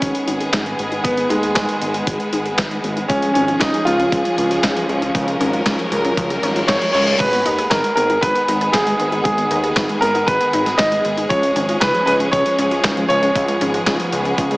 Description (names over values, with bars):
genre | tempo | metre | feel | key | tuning
italo disco | 117 BPM | 4/4 | straight | G# dorian | A4 = 441 Hz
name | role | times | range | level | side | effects
clear concert grand piano | melody | 0.0-14.6 s | G#3 to D#5 | -19 LUFS | equal | digital delay
bright studio string section | sustained chords | 0.0-14.6 s | D#3 to A#4 | -22 LUFS | equal | none
analog pluck | arpeggios | 0.0-14.6 s | E#3 to B4 | -27 LUFS | left 1 dB | chorus, digital delay
fat analog bass | bass | 0.0-14.6 s | G#1 to D#2 | -24 LUFS | equal | none
dusty soul sampler-style drum kit | drums | 0.0-14.6 s | crash cymbal, handclaps, hi-hat, snare drum | -24 LUFS | equal | gated reverb
electronic kick drum | drums | 0.0-14.5 s | none | -26 LUFS | equal | none
riser, reverse cymbal and sub drop | sound effects | 4.4-9.3 s | none | -28 LUFS | left 1 dB | none
room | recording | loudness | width
moderate plate reverb, RT60 1.6 s | small speaker sound | -15 LUFS | side -22 dB against mid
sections
0.0-7.2 A section; 7.2-14.6 B section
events
filter sweep on synth arpeggio sound 0.0-7.2; reverse cymbal 6.2-7.2; impact 7.2-9.3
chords
0.0 G#m; 3.1 C#; 7.2 G#m; 11.3 C#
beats
0.02 0.53 | 1.05 1.56 2.07 2.59 | 3.10 3.61 4.12 4.64 | 5.15 5.66 6.17 6.69 | 7.20 7.71 8.23 8.74 | 9.25 9.77 10.28 10.79 | 11.30 11.82 12.33 12.84 | 13.36 13.87 14.38